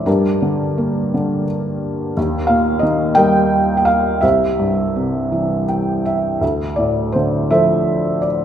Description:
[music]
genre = classical, lyrical solo piano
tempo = 54-60 BPM (dotted quarters)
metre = 6/8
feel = rubato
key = D minor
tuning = A4 = 439 Hz
[part]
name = felt-muted upright piano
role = solo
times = 0.0-8.4 s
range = C2 to G5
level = -15 LUFS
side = equal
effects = none
[sound]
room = moderate recital hall reverb, RT60 1.4 s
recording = minimal, uncompressed stereo recording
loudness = -15 LUFS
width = side -9 dB against mid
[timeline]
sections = 0.0-8.4 A section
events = felt piano fill 5.3-6.4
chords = 0.1 Gm; 2.2 Eb; 4.2 C; 6.4 Dm7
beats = | 0.07 1.14 | 2.17 3.18 | 4.23 5.32 | 6.42 7.50

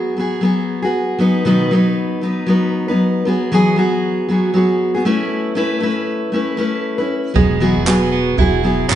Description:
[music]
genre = acoustic pop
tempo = 117 BPM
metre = 4/4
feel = swing 60% on 16ths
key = E major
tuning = A4 = 439 Hz
[part]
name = fingerpicked steel-string acoustic guitar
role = accompaniment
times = 0.0-9.0 s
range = B2 to B4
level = -15 LUFS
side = left 1 dB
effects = none
[part]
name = direct-recorded clean electric guitar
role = second line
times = 7.4-9.0 s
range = G#3 to E4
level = -20 LUFS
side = right 7 dB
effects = none
[part]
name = upright bass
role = bass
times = 7.4-9.0 s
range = E1 to G#1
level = -21 LUFS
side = right 1 dB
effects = none
[part]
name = jazz brush drum kit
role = drums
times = 7.4-9.0 s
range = handclaps, kick drum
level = -19 LUFS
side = right 3 dB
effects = none
[sound]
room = moderate recital hall reverb, RT60 1.7 s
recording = recorded in a church or concert hall, nothing above 10.5 kHz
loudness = -14 LUFS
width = side -11 dB against mid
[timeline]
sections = 0.0-9.0 A section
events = none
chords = 0.0 Eadd9 (rootless); 1.2 B; 3.3 Eadd9; 5.0 Aadd9; 7.4 Eadd9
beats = 0.17 0.69 | 1.20 1.71 2.23 2.74 | 3.25 3.77 4.28 4.79 | 5.31 5.82 6.33 6.84 | 7.36 7.87 8.38 8.89

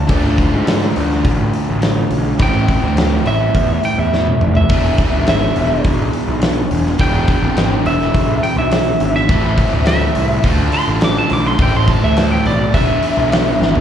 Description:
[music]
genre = blues rock power trio and southern rock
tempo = 104 BPM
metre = 4/4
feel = straight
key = A harmonic minor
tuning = A4 = 436 Hz
[part]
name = lightly driven lead guitar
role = melody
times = 0.0-13.8 s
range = D5 to D6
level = -20 LUFS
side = right 1 dB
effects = slapback echo
[part]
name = crunchy overdriven guitar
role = riff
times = 0.0-13.8 s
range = A2 to A4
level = -18 LUFS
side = equal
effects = slapback echo
[part]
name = fuzz picked electric bass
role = bass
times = 0.0-13.8 s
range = E1 to G#2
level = -18 LUFS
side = equal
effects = overdrive
[part]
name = big rock drum kit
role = drums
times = 0.1-13.8 s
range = hi-hat, kick drum, snare drum, toms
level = -17 LUFS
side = equal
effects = none
[sound]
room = light reverb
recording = live gig heard through the venue's PA, club reverb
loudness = -12 LUFS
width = side -9 dB against mid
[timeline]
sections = 0.0-13.8 A section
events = lead electric guitar solo 0.0-13.8; drum fill 4.1-4.7, 13.6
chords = 0.0 Dm; 2.4 Am; 4.7 E7#9; 9.3 Am; 10.4 Dm; 11.6 Am; 12.7 E7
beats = | 0.10 0.67 1.25 1.82 | 2.40 2.97 3.55 4.12 | 4.70 5.27 5.85 6.42 | 7.00 7.57 8.15 8.72 | 9.30 9.87 10.45 11.02 | 11.60 12.17 12.75 13.32

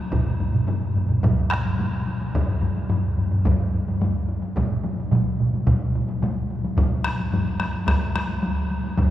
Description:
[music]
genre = japanese traditional, taiko drum ensemble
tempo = 108 BPM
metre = 4/4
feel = straight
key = none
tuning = none
[part]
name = solo taiko drums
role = percussion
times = 0.1-9.1 s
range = none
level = -26 LUFS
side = left 1 dB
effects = none
[part]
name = taiko ensemble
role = percussion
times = 0.1-9.1 s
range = none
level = -28 LUFS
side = left 2 dB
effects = none
[part]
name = taiko ensemble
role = percussion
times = 0.1-9.1 s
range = none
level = -26 LUFS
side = right 2 dB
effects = none
[part]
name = taiko ensemble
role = percussion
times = 0.1-9.1 s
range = none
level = -25 LUFS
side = equal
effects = none
[sound]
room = wet cathedral reverb, RT60 6.5 s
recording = recorded in a church or concert hall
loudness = -20 LUFS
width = side -12 dB against mid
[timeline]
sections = 0.0-9.1 A section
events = none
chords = none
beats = | 0.12 0.68 1.23 1.79 | 2.35 2.90 3.46 4.01 | 4.57 5.12 5.67 6.23 | 6.78 7.33 7.88 8.44 | 8.99

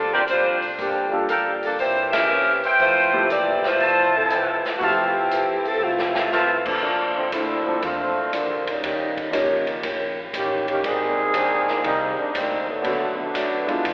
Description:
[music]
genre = jazz, big band swing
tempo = 120 BPM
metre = 4/4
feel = swing 68% on 8ths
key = unclear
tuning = A4 = 441 Hz
[part]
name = clear saxophone section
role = melody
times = 0.0-6.7 s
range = F3 to E5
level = -20 LUFS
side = equal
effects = none
[part]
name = picked old ladder-braced acoustic guitar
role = accompaniment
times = 0.0-13.9 s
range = F2 to C5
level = -29 LUFS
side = equal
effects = none
[part]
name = upright bass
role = bass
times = 0.0-13.9 s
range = F1 to F#2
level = -42 LUFS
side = equal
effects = none
[part]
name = warm trumpet section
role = stabs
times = 0.1-6.6 s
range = A4 to A5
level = -22 LUFS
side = equal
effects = none
[part]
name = swinging big-band drum kit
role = drums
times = 0.3-13.9 s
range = crash cymbal, hi-hat, kick drum, ride cymbal, snare drum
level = -29 LUFS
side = equal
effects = none
[part]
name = warm baby grand piano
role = accompaniment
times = 1.1-13.9 s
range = D3 to G5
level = -29 LUFS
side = equal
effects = none
[part]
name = mellow trombone section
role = second line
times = 7.2-13.9 s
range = C3 to Ab4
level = -23 LUFS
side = equal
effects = none
[sound]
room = wet church reverb, RT60 2.8 s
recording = recorded in a church or concert hall, telephone sound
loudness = -19 LUFS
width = side -24 dB against mid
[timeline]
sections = 0.0-6.8 A section; 6.8-13.9 B section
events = band accent 2.0; drum fill 5.8-6.3; trombone section solo 6.8-13.9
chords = 0.0 Bb69; 0.8 Gm9; 1.8 C7b9; 2.8 Fmaj7; 6.8 Bbmaj9; 8.8 Eb7; 10.8 Abmaj9#11; 12.8 Bm7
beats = 0.28 | 0.79 1.29 1.80 2.30 | 2.80 3.31 3.81 4.31 | 4.81 5.32 5.82 6.32 | 6.82 7.33 7.83 8.33 | 8.83 9.33 9.83 10.34 | 10.84 11.34 11.84 12.34 | 12.84 13.34 13.85

